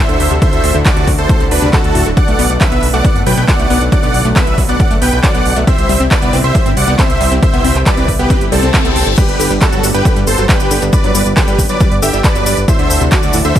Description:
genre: uplifting trance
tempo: 137 BPM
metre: 4/4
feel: straight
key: G major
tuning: A4 = 441 Hz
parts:
  - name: dense compressed supersaw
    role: melody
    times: 0.0-13.6 s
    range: C4 to G5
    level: -16 LUFS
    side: right 1 dB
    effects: sidechain pumping, digital delay
  - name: lush unison pad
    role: sustained chords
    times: 0.0-13.6 s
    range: D3 to A4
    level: -21 LUFS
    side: equal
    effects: chorus, sidechain pumping
  - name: wide unison pluck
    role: arpeggios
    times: 0.0-13.5 s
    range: A2 to C4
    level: -20 LUFS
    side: left 2 dB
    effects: sidechain pumping, digital delay
  - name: fat analog bass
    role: bass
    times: 0.1-13.5 s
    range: D1 to G2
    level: -16 LUFS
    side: equal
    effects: sidechain pumping
  - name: big-room dance drum kit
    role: drums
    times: 0.1-13.6 s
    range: crash cymbal, handclaps, hi-hat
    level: -19 LUFS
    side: right 1 dB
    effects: overdrive
  - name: electronic kick drum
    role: drums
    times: 0.4-13.6 s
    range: none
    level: -13 LUFS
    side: equal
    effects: overdrive
  - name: reverse cymbal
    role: sound effects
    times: 8.5-9.2 s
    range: none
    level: -22 LUFS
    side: left 6 dB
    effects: none
  - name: cabasa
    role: percussion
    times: 9.2-13.6 s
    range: none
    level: -23 LUFS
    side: left 7 dB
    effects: none
room: little or no reverb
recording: none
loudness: -9 LUFS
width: side -11 dB against mid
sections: 0.0-13.6 A section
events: reverse cymbal 8.5-9.2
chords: 0.0 Dadd9; 2.2 Bm7; 5.7 C; 9.2 G; 12.7 Dadd9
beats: | 0.42 0.86 1.29 1.73 | 2.17 2.61 3.05 3.48 | 3.92 4.36 4.80 5.24 | 5.67 6.11 6.55 6.99 | 7.42 7.86 8.30 8.74 | 9.18 9.62 10.05 10.49 | 10.93 11.37 11.80 12.24 | 12.68 13.12 13.56

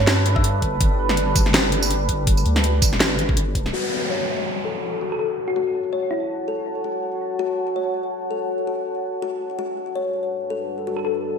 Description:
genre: half-time drum and bass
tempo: 164 BPM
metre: 4/4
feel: swing 57% on 16ths, half-time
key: F# phrygian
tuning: A4 = 440 Hz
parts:
  - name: thumb-piano-like synth pluck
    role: melody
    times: 0.0-0.7, 5.1-6.5, 11.0-11.1 s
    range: E4 to E5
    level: -27 LUFS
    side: left 3 dB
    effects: lush chorus, ping-pong delay
  - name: deep dark ambient pad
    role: sustained chords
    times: 0.0-11.4 s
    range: G3 to A5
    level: -26 LUFS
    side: equal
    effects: chorus, built-in reverb, sidechain pumping
  - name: deep soft wobble bass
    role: bass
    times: 0.0-3.7 s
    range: G1 to G2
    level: -22 LUFS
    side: equal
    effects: chorus
  - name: drum and bass drum kit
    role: drums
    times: 0.1-3.7 s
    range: hi-hat, snare drum, tambourine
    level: -21 LUFS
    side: equal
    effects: gated reverb
  - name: electronic kick drum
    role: drums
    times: 0.4-3.6 s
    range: none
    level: -21 LUFS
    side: equal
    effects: none
  - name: kalimba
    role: arpeggios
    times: 3.7-11.0 s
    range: F#4 to C#5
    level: -26 LUFS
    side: left 4 dB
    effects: low-pass filter, digital delay
  - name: downlifter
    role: sound effects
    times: 3.7-6.7 s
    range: none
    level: -28 LUFS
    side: left 1 dB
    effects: none
room: moderate lush hall reverb, RT60 1.6 s, digital ambience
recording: bright 1980s-style digital production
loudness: -20 LUFS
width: side -7 dB against mid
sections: 0.0-3.7 A section; 3.7-11.4 B section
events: drop 0.0-3.7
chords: 0.0 G; 3.7 F#m; 9.6 G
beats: 0.08 0.44 | 0.81 1.17 1.54 1.91 | 2.27 2.64 3.00 3.37 | 3.73 4.10 4.47 4.83 | 5.20 5.56 5.93 6.29 | 6.66 7.03 7.39 7.76 | 8.12 8.49 8.86 9.22 | 9.59 9.95 10.32 10.69 | 11.05

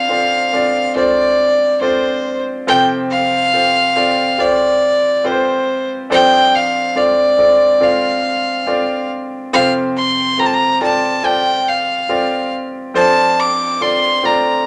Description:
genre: pop ballad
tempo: 70 BPM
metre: 4/4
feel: straight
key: F major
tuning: A4 = 441 Hz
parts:
  - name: rich fiddle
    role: melody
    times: 0.0-14.7 s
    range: C5 to D6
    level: -16 LUFS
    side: equal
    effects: none
  - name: clear baby grand piano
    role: accompaniment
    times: 0.0-14.7 s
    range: F2 to D5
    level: -20 LUFS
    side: equal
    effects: none
room: wet studio reverb, RT60 0.7 s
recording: none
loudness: -15 LUFS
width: mono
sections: 0.0-14.7 A section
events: none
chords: 0.0 Dm7/F; 2.7 Fadd9; 6.1 Dm7/F; 9.5 Fadd9; 12.9 Dm7/F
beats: 0.09 0.95 1.81 | 2.66 3.52 4.38 5.24 | 6.09 6.95 7.81 8.66 | 9.52 10.38 11.23 12.09 | 12.95 13.81 14.66

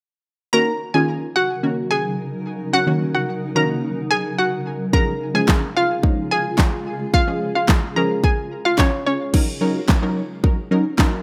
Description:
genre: dance-pop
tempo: 109 BPM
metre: 4/4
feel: straight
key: Eb minor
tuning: A4 = 439 Hz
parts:
  - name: hollow square pluck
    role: melody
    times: 0.5-9.2 s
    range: Db4 to Bb5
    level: -23 LUFS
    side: equal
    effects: chorus, sidechain pumping, tape echo
  - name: punchy chord stab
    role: accompaniment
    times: 0.5-11.2 s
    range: Eb3 to Bb4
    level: -24 LUFS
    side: equal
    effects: chorus, sidechain pumping
  - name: granular cloud pad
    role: sustained chords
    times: 1.4-9.3 s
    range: Db3 to Bb4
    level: -31 LUFS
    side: equal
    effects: built-in reverb, sidechain pumping
  - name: pop drum kit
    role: drums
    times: 4.9-11.1 s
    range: crash cymbal, handclaps, kick drum, snare drum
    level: -19 LUFS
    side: equal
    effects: none
room: moderate lush hall reverb, RT60 1.7 s, digital ambience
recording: rough home demo mix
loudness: -20 LUFS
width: mono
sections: 0.5-9.3 A section; 9.3-11.2 B section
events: none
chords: 0.5 Ebm7; 4.9 Db; 9.3 Ebm7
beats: | 0.53 1.08 1.63 2.18 | 2.73 3.28 3.83 4.38 | 4.93 5.48 6.04 6.58 | 7.14 7.69 8.24 8.79 | 9.34 9.89 10.44 10.99

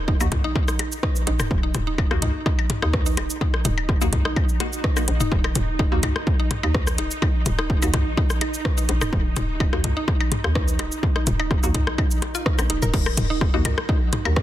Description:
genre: minimal techno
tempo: 126 BPM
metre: 4/4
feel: straight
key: Eb minor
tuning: A4 = 439 Hz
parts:
  - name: hollow knocking FM bass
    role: bass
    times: 0.0-14.4 s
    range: Eb1 to Eb2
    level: -25 LUFS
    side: equal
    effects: tube saturation, sidechain pumping
  - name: swarming drone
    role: texture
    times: 0.0-14.4 s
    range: Gb3 to Gb4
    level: -34 LUFS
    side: right 1 dB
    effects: built-in reverb, sidechain pumping
  - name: mallet-like synth pluck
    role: riff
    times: 0.1-14.3 s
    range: Bb3 to Bb4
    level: -31 LUFS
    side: right 1 dB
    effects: chorus, sidechain pumping, dub echo
  - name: electronic kick drum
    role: drums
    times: 0.1-14.4 s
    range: none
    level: -22 LUFS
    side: equal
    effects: overdrive
  - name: minimal click drum kit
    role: percussion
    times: 0.1-14.4 s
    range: percussion blips, rim click, toms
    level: -27 LUFS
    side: left 3 dB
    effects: soft clipping on snare, dub echo
  - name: filtered dub chord stab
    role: stabs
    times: 0.2-13.6 s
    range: Bb3 to Gb4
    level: -32 LUFS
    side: left 3 dB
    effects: phaser, dub echo
  - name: house drum kit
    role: drums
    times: 0.2-14.4 s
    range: cabasa, crash cymbal, hi-hat, rim click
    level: -28 LUFS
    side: right 1 dB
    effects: overdrive
room: little or no reverb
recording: dense, heavily limited modern master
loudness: -19 LUFS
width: side -13 dB against mid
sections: 0.0-14.4 A section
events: none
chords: 0.0 Ebm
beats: 0.08 0.56 1.03 | 1.51 1.98 2.46 2.94 | 3.41 3.89 4.37 4.84 | 5.32 5.79 6.27 6.75 | 7.22 7.70 8.17 8.65 | 9.13 9.60 10.08 10.55 | 11.03 11.51 11.98 12.46 | 12.94 13.41 13.89 14.37

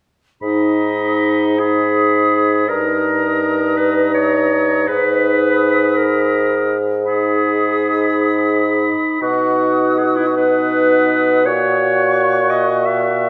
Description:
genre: classical, slow romantic movement for wind quintet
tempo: 50-58 BPM (dotted quarters)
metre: 12/8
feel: rubato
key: G# minor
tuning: A4 = 443 Hz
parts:
  - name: concert flute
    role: melody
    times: 0.4-13.3 s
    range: C#6 to D#6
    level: -28 LUFS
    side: equal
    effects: none
  - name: warm oboe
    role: second line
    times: 0.4-13.3 s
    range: F#5 to B5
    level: -26 LUFS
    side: equal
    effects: none
  - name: clear clarinet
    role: accompaniment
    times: 0.4-13.3 s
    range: D#4 to E5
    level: -20 LUFS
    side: equal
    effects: none
  - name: warm French horn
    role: accompaniment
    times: 0.4-13.3 s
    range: D#4 to F#4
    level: -23 LUFS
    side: equal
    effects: none
  - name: mellow bassoon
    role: bass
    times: 0.4-13.3 s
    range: G2 to B2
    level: -20 LUFS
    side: equal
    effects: none
room: moderate scoring stage reverb, RT60 1.6 s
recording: none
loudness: -16 LUFS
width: mono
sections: 0.4-13.3 A section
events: none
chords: 0.4 G#m; 2.7 D#/G; 4.9 G#m; 9.2 B; 11.5 F#/A#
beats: | 0.43 1.60 2.69 3.79 | 4.89 5.97 7.05 8.13 | 9.22 10.37 11.47 12.52

